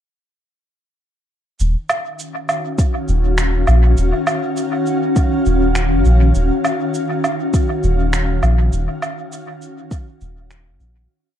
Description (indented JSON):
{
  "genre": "ambient dub",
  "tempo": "101 BPM",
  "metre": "4/4",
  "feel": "swing 59% on 16ths",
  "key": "Eb minor",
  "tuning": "A4 = 441 Hz",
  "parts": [
    { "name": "granular cloud pad", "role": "sustained chords", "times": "2.5-11.1 s", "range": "Eb3 to F5", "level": "-20 LUFS", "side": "left 1 dB", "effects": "built-in reverb" },
    { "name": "soft dub sub bass", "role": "bass", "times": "1.6-11.1 s", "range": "Eb1 to Bb1", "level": "-14 LUFS", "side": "equal", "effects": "tube saturation" },
    { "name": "electronic shaker, woodblock and finger snaps", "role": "drums", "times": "1.6-10.9 s", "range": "none", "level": "-23 LUFS", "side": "right 1 dB", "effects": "dub echo" },
    { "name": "electronic kick drum", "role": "drums", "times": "2.8-10.1 s", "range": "none", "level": "-17 LUFS", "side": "equal", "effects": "none" }
  ],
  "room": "little or no reverb",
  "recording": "echo-heavy mix",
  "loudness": "-15 LUFS",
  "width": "side -10 dB against mid",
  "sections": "1.6-11.1 groove",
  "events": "fade-out 7.9-11.1",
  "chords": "1.6 Ebm9"
}